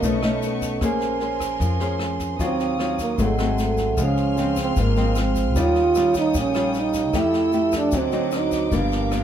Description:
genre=bossa nova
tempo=152 BPM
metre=4/4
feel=straight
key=unclear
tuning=A4 = 440 Hz
part: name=growling trombone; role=melody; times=0.0-8.7 s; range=Ab3 to F4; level=-22 LUFS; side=right 4 dB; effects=none
part: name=nylon-string guitar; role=accompaniment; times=0.0-9.2 s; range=G2 to C5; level=-26 LUFS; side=left 4 dB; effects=none
part: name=vibraphone with medium mallets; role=accompaniment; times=0.0-9.2 s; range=C4 to Db6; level=-27 LUFS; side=right 4 dB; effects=none
part: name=clear studio violin section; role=sustained chords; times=0.0-9.2 s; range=A4 to F6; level=-34 LUFS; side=left 2 dB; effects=none
part: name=upright bass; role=bass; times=0.0-9.2 s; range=G1 to F2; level=-27 LUFS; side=left 1 dB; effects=none
part: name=jazz brush drum kit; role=drums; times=0.0-9.2 s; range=kick drum, rim click, snare drum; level=-30 LUFS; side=equal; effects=none
part: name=tube shaker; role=percussion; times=0.0-9.2 s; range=none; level=-41 LUFS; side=left 9 dB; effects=none
room=light reverb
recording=minimal, uncompressed stereo recording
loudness=-19 LUFS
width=side -9 dB against mid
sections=0.0-9.2 A section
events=trombone solo 0.0-9.2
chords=0.0 B9; 0.8 Bbm9; 2.4 Ebm9; 3.2 Ab7b9; 4.0 Dbmaj7; 5.6 Eb9; 7.1 Fmaj9; 7.9 D7b9; 8.7 Gm7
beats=0.03 0.42 | 0.82 1.21 1.61 2.00 | 2.40 2.79 3.19 3.58 | 3.98 4.37 4.77 5.16 | 5.56 5.95 6.35 6.74 | 7.14 7.53 7.93 8.32 | 8.72 9.11

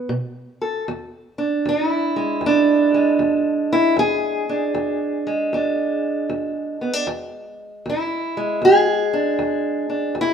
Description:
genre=acoustic country blues, solo or duo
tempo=77 BPM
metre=4/4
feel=swing 66% on 8ths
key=E mixolydian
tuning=A4 = 440 Hz
part: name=fingerpicked steel-string acoustic guitar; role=solo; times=0.0-10.3 s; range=E2 to A4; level=-18 LUFS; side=right 1 dB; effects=none
room=moderate stone room reverb, RT60 1.3 s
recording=band playing live in one room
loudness=-18 LUFS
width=side -7 dB against mid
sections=0.9-10.3 A section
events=none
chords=0.0 Asus2/B; 0.9 E7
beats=0.10 | 0.88 1.65 2.42 3.19 | 3.97 4.74 5.52 6.29 | 7.07 7.84 8.62 9.39 | 10.17

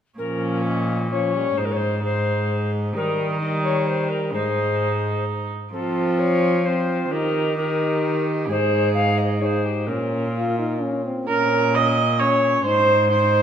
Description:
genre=classical, renaissance-style consort dance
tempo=130 BPM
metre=3/4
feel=straight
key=Bb dorian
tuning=A4 = 440 Hz
part: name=mellow alto recorder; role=melody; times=0.2-13.4 s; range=A4 to F5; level=-25 LUFS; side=left 4 dB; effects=none
part: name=warm viola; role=second line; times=0.2-13.4 s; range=Db4 to Eb5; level=-24 LUFS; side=right 4 dB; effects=none
part: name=warm trombone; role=accompaniment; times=0.2-13.4 s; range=F3 to F4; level=-26 LUFS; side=left 3 dB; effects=none
part: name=rich cello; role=bass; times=0.2-13.4 s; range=Ab2 to F3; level=-24 LUFS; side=right 1 dB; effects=none
room=wet recital hall reverb, RT60 1.8 s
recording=none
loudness=-19 LUFS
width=side -8 dB against mid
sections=0.2-11.3 A section; 11.3-13.4 A section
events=none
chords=0.2 Bbm; 1.6 Ab; 2.9 Eb; 4.3 Ab; 5.7 F; 7.1 Eb; 8.5 Ab; 9.9 Bbm; 12.7 Ab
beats=| 0.19 0.65 1.11 | 1.57 2.03 2.49 | 2.95 3.41 3.87 | 4.33 4.80 5.26 | 5.73 6.19 6.65 | 7.11 7.57 8.03 | 8.49 8.95 9.41 | 9.87 10.34 10.81 | 11.27 11.73 12.20 | 12.66 13.12

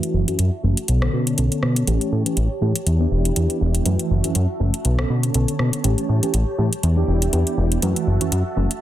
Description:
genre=filtered disco house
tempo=121 BPM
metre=4/4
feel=swing 56% on 16ths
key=unclear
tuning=A4 = 440 Hz
part: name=mellow tine electric piano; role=accompaniment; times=0.0-8.7 s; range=D3 to A4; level=-24 LUFS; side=right 1 dB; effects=medium stereo tremolo, phaser, low-pass filter
part: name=string machine, full ensemble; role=sustained chords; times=0.0-8.8 s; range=D3 to A5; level=-31 LUFS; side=equal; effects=ensemble chorus, low-pass filter
part: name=house drum kit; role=drums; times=0.0-8.8 s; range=hi-hat, rim click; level=-26 LUFS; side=equal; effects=overdrive
part: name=plucky analog bass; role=bass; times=0.1-8.7 s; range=E1 to B2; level=-19 LUFS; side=equal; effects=low-pass filter
room=digital ambience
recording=dense, heavily limited modern master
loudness=-18 LUFS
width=side -13 dB against mid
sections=0.0-8.8 A section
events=filter sweep 0.0-8.8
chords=0.0 F#m7; 0.9 Bm9; 1.9 A7; 2.9 Em7; 3.9 F#m7; 4.8 Bm9; 5.8 A7; 6.8 Em7; 7.8 F#m7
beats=0.39 0.88 1.38 | 1.87 2.37 2.87 3.36 | 3.86 4.35 4.85 5.34 | 5.84 6.34 6.83 7.33 | 7.82 8.32

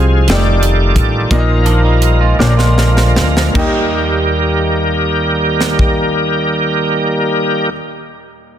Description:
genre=slow gospel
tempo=49-61 BPM (dotted quarters)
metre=6/8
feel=straight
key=Eb major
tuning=A4 = 443 Hz
part: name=clear upright piano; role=accompaniment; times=0.0-8.6 s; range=Eb2 to Eb5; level=-20 LUFS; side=equal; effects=none
part: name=bright tonewheel organ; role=sustained chords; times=0.0-7.7 s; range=C3 to D5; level=-15 LUFS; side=right 1 dB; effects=slow rotary speaker, overdrive, chorus vibrato
part: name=upright bass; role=bass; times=0.0-7.7 s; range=F1 to Eb2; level=-15 LUFS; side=equal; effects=none
part: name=crisp fusion drum kit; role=drums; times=0.3-6.0 s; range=crash cymbal, hi-hat, kick drum, snare drum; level=-17 LUFS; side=equal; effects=soft clipping on snare
part: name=clean electric guitar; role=second line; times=1.7-3.5 s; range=F3 to G4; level=-21 LUFS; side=right 5 dB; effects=none
room=light reverb, small room ambience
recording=dense, heavily limited modern master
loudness=-11 LUFS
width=side -10 dB against mid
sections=0.0-3.5 A section; 3.5-8.4 B section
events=slowing down 0.0-3.5; drum fill 2.4-3.5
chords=0.3 F13; 1.3 Bbsus4; 2.4 Bb; 3.5 Eb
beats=0.28 | 1.30 2.38 | 3.55 4.77 | 5.99 7.21

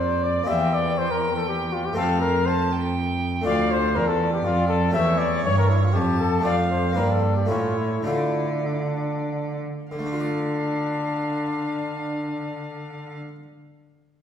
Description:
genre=classical, baroque-style sonata movement with continuo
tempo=92-122 BPM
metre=3/4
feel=straight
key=F major, D minor from 3.5 s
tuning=A4 = 444 Hz
part: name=warm trumpet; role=melody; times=0.0-13.2 s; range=D4 to E5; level=-26 LUFS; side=left 3 dB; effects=none
part: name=rich violin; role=second line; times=0.0-13.1 s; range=C#5 to A5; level=-30 LUFS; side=right 3 dB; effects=none
part: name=harpsichord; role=accompaniment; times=0.0-13.4 s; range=D2 to D5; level=-28 LUFS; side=left 1 dB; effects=none
part: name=rich cello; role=bass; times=0.0-13.1 s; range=D2 to D3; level=-25 LUFS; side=right 1 dB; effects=none
room=wet recital hall reverb, RT60 1.5 s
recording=heard from further back in the room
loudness=-21 LUFS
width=side -9 dB against mid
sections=0.0-9.9 A section; 9.9-13.8 B section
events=slowing down 5.7-9.9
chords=0.5 C7/E; 2.0 F; 3.5 Dm; 4.9 A7/E; 6.5 Dm/F; 7.0 Em7b5/G; 7.5 A; 8.1 Dm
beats=| 0.48 0.98 1.48 | 1.97 2.47 2.96 | 3.46 3.96 4.45 | 4.95 5.44 5.95 | 6.45 6.97 7.50 | 8.06 8.66 9.28 | 9.92 10.56 11.20 | 11.84 12.49 13.13

